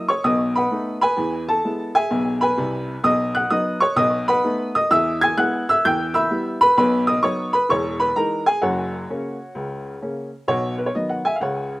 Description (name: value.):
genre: jazz, stride piano.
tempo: 129 BPM.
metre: 4/4.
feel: swing 65% on 8ths.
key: E major, B major from 3.1 s.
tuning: A4 = 438 Hz.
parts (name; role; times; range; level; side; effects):
clear upright piano; solo; 0.0-11.8 s; E1 to G#6; -18 LUFS; equal; none.
room: light reverb.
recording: recorded outdoors, with no room sound.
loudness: -18 LUFS.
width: side -19 dB against mid.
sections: 0.0-10.5 A section; 10.5-11.8 B section.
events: none.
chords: 0.3 B7; 1.2 E; 3.1 B; 4.0 B7; 4.9 E; 5.8 Em; 6.8 B; 7.7 Emaj7; 8.6 F#; 10.5 B.